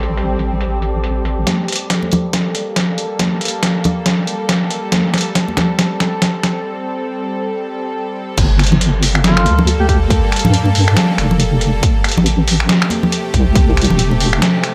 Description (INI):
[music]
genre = deep dubstep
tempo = 139 BPM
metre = 4/4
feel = swing 58% on 16ths, half-time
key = G minor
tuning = A4 = 438 Hz
[part]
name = bowed-like drone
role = sustained chords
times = 0.0-14.7 s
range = C3 to A4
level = -24 LUFS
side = equal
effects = built-in reverb
[part]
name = deep soft wobble bass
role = bass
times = 0.0-1.5, 8.4-14.4 s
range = E1 to G2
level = -17 LUFS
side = equal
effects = chorus
[part]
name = trip hop sampler-style drum kit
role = drums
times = 0.0-14.7 s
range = crash cymbal, finger snaps, hi-hat, snare drum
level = -19 LUFS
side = equal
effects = overdrive, low-pass filter on hats, low-pass filter on snare, low-pass filter on cymbals, low-pass filter on room
[part]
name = wind-like tuned noise texture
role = texture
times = 0.0-1.5 s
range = G3 to G4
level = -31 LUFS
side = equal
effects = built-in reverb
[part]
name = electronic kick drum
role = drums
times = 1.5-13.7 s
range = none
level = -19 LUFS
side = equal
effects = high-pass filter on kick, high-pass filter on room
[part]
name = congas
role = percussion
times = 1.5-5.7, 8.4-14.2 s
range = none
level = -22 LUFS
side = equal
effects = dub echo
[part]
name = warm duduk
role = melody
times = 9.2-10.0 s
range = F4 to G4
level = -23 LUFS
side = equal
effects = dub echo
[sound]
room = light reverb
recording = none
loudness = -15 LUFS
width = mono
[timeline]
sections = 0.0-1.5 A section; 1.5-8.4 B section; 8.4-14.7 C section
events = build-up 1.5-8.4; drum fill 1.5-6.7; filter sweep on synth drone 1.5-8.4; break 6.7-8.4; drop 8.4-14.7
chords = 0.0 Am7; 1.5 Gmadd9; 4.9 Am7; 8.4 Gmadd9; 11.8 Am7